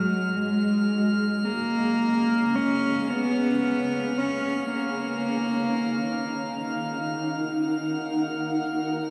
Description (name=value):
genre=ambient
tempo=free time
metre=none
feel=none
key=unclear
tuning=A4 = 441 Hz
part: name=clear cello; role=melody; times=0.0-6.9 s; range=F#3 to C#4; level=-27 LUFS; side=equal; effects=shimmer reverb, tape echo
part: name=granular cloud pad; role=sustained chords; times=0.0-9.1 s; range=G#3 to F#5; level=-32 LUFS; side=equal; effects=built-in reverb, shimmer reverb
part: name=drifting glass-harmonics texture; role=texture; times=0.0-9.1 s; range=E#6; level=-36 LUFS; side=equal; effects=chorus, built-in reverb, shimmer reverb
room=wet huge ambient reverb, RT60 8.1 s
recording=dark, warm production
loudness=-26 LUFS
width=mono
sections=0.0-9.1 A section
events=none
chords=0.4 C#7; 4.8 D#madd9